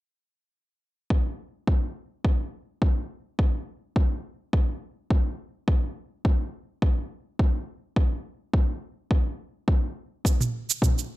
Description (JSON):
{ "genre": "organic downtempo", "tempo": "105 BPM", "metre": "4/4", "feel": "straight", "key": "none", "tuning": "none", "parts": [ { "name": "electronic kick drum", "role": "drums", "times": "1.1-10.9 s", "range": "none", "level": "-22 LUFS", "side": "equal", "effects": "overdrive" }, { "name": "electronic shaker and toms", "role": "drums", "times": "10.3-11.1 s", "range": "none", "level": "-26 LUFS", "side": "right 3 dB", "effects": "none" } ], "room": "little or no reverb", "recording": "none", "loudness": "-24 LUFS", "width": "side -18 dB against mid", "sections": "1.1-11.2 A section", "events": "none", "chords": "none" }